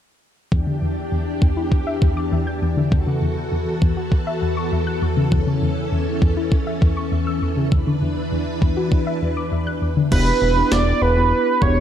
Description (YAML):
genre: synth-pop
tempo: 100 BPM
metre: 4/4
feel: straight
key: E dorian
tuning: A4 = 441 Hz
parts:
  - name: string machine, violins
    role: sustained chords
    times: 0.5-10.1 s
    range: E2 to B4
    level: -24 LUFS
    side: equal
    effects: ensemble chorus
  - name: soft round pluck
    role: arpeggios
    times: 0.5-10.1 s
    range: E2 to G6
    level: -22 LUFS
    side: left 2 dB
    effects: chorus, ping-pong delay
  - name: clean 12-bit digital drum machine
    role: drums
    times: 0.5-11.8 s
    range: crash cymbal, kick drum, snare drum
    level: -18 LUFS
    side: equal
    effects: overdrive
  - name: octave-doubled lead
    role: melody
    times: 10.1-11.8 s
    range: B4 to D5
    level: -18 LUFS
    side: right 4 dB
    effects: chorus
  - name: muted felt-like synth keys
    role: accompaniment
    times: 10.1-11.8 s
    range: B3 to G4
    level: -22 LUFS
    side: right 1 dB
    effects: chorus
  - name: fat analog bass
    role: bass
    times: 10.1-11.8 s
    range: E1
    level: -19 LUFS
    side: equal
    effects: none
room: moderate scoring stage reverb, RT60 1.5 s, digital ambience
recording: dark, warm production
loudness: -17 LUFS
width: side -10 dB against mid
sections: 0.5-10.1 A section; 10.1-11.8 B section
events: none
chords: 0.5 Em7; 2.9 F#m/E; 5.3 A/E; 7.7 Bm/E; 10.1 Em7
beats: | 0.52 1.12 1.72 2.32 | 2.92 3.52 4.12 4.72 | 5.32 5.92 6.52 7.12 | 7.72 8.32 8.92 9.52 | 10.12 10.72 11.32